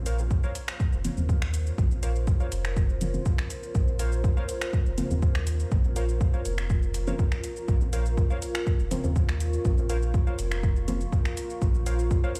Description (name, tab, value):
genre	dub techno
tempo	122 BPM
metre	4/4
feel	straight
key	Bb minor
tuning	A4 = 440 Hz
part	deep dark ambient pad	sustained chords	1.1-12.4 s	F4 to Db6	-38 LUFS	equal	chorus, built-in reverb, sidechain pumping
part	soft dub sub bass	bass	0.0-12.2 s	F1 to Eb2	-30 LUFS	equal	sidechain pumping
part	warbly lo-fi synth keys	riff	0.1-12.3 s	Bb4 to F5	-43 LUFS	equal	chorus, sidechain pumping, dub echo
part	deep house drum kit	drums	0.1-12.4 s	finger snaps, hi-hat, shaker	-40 LUFS	equal	small room ambience
part	electronic kick drum	drums	0.3-12.2 s	none	-27 LUFS	equal	small room ambience
part	filtered dub chord stab	stabs	1.0-11.0 s	Db3 to C4	-38 LUFS	equal	chorus, phaser, sidechain pumping, dub echo
room	little or no reverb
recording	played on a big sound system in a bare room, large studio reverb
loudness	-26 LUFS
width	mono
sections	0.0-12.4 A section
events	none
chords	0.0 Bbmadd9